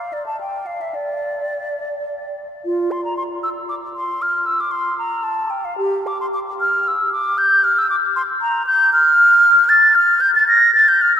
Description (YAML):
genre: classical, baroque-style fantasia for unaccompanied flute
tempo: 103-119 BPM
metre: 3/4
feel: rubato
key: F major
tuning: A4 = 440 Hz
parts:
  - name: mellow hollow silver concert flute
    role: solo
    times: 0.0-11.2 s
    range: F4 to Bb6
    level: -14 LUFS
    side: equal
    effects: none
room: wet cathedral reverb, RT60 6.0 s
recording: none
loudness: -14 LUFS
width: side -9 dB against mid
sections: 0.0-2.6 A section; 2.6-11.2 A section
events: none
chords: none